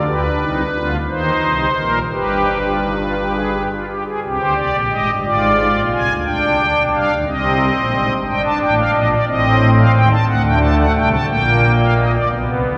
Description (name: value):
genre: classical, baroque-style 3-part fugue for pipe organ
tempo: 59 BPM (dotted quarters)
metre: 6/8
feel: straight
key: unclear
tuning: A4 = 441 Hz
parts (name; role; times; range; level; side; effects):
- pipe organ, strings celeste; solo; 0.0-12.8 s; G1 to A5; -16 LUFS; equal; none
room: wet cathedral reverb, RT60 4.0 s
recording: recorded in a church or concert hall, small room ambience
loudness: -16 LUFS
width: mono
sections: 0.1-4.2 A section; 4.2-12.3 B section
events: none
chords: 0.1 G7; 1.1 Cm; 2.1 G; 4.2 Cm; 5.2 Dm7b5/Ab; 6.3 G/B; 7.3 Cm; 8.3 Gm; 9.3 Am7b5; 10.3 D; 11.3 Gm/Bb